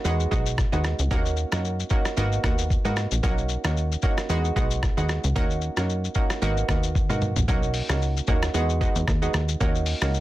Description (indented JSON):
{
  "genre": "afrobeats",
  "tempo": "113 BPM",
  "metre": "4/4",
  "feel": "swing 55% on 16ths",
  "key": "B major",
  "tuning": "A4 = 440 Hz",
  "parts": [
    { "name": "analog pluck", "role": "accompaniment", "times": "0.0-10.2 s", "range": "G#3 to F#4", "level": "-28 LUFS", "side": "right 2 dB", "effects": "chorus, plate reverb" },
    { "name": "plucky analog bass", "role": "bass", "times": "0.0-10.2 s", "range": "G#1 to G#2", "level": "-25 LUFS", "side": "equal", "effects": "none" },
    { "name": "lo-fi sampler-style drum kit", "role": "drums", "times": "0.0-10.2 s", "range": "hi-hat, kick drum, rim click, shaker, toms", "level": "-25 LUFS", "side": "equal", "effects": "soft clipping on snare" }
  ],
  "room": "little or no reverb",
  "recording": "dense, heavily limited modern master",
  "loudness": "-22 LUFS",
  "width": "side -16 dB against mid",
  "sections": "0.0-7.5 A section; 7.5-10.2 B section",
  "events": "drum fill 7.0-7.5",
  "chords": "0.0 Emaj7; 1.1 D#m7; 2.2 G#m7; 3.2 Bmaj7; 4.3 Emaj7; 5.4 D#m7; 6.4 G#m7; 7.5 Bmaj7; 8.5 Emaj7; 9.6 D#m7",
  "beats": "0.05 0.58 | 1.11 1.64 2.17 2.70 | 3.23 3.77 4.30 4.83 | 5.36 5.89 6.42 6.95 | 7.48 8.01 8.54 9.07 | 9.61 10.14"
}